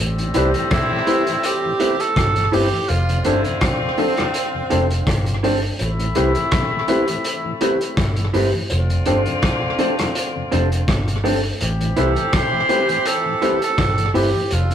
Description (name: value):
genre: lovers rock reggae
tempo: 83 BPM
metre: 4/4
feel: swing 54% on 16ths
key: A minor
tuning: A4 = 441 Hz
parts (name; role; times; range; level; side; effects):
- clear horn section; second line; 0.0-14.7 s; A2 to A4; -25 LUFS; left 2 dB; none
- vintage muted fingered electric bass; bass; 0.0-14.7 s; F1 to C2; -21 LUFS; equal; none
- mellow tonewheel organ; accompaniment; 0.2-14.7 s; F2 to G4; -30 LUFS; left 1 dB; slow rotary speaker, tape echo
- crunchy breakbeat drum kit; drums; 0.2-14.7 s; hi-hat, kick drum, rim click; -23 LUFS; equal; tape echo
- electric guitar through a small old amp; stabs; 0.3-14.3 s; D4 to C5; -22 LUFS; equal; none
- clear tenor saxophone; melody; 0.4-5.4, 12.0-14.7 s; C4 to C5; -22 LUFS; right 4 dB; none
- tine electric piano; accompaniment; 0.4-14.3 s; C4 to B4; -27 LUFS; left 2 dB; slow stereo tremolo
room: wet stone room reverb, RT60 1.3 s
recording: rough rehearsal-room recording, tube saturation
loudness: -16 LUFS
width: side -9 dB against mid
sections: 0.0-14.7 A section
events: none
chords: 0.0 Am7; 2.9 F6; 5.8 Am7; 8.7 F6; 11.6 Am7